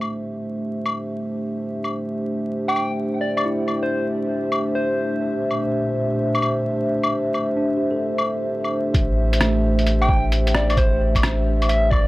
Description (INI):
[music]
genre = future garage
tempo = 131 BPM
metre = 4/4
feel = swing 67% on 16ths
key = A phrygian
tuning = A4 = 440 Hz
[part]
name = dark analog pad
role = sustained chords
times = 0.0-12.1 s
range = Bb2 to E5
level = -23 LUFS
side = equal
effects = chorus, sidechain pumping
[part]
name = lo-fi sampler-style drum kit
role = drums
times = 0.0-12.0 s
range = claves, hi-hat, rim click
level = -24 LUFS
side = left 2 dB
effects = none
[part]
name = soft struck synth lead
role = melody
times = 2.7-5.3, 10.0-12.1 s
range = C5 to G5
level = -25 LUFS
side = equal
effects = chorus, analog delay
[part]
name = tine electric piano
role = accompaniment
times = 3.5-12.1 s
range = A3 to A4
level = -29 LUFS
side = right 2 dB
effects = medium stereo tremolo, sidechain pumping, low-pass filter, analog delay
[part]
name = warm sub bass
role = bass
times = 8.9-12.1 s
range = A1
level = -20 LUFS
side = equal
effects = sidechain pumping
[part]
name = electronic kick drum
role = drums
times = 8.9-12.0 s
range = none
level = -20 LUFS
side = equal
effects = none
[sound]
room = digital ambience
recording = dry, gritty hardware recording, vinyl crackle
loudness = -19 LUFS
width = side -18 dB against mid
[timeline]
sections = 0.0-8.9 A section; 8.9-12.1 B section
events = filter sweep on tine electric piano 0.0-8.9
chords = 0.0 Am; 5.3 Bbadd9; 7.1 Am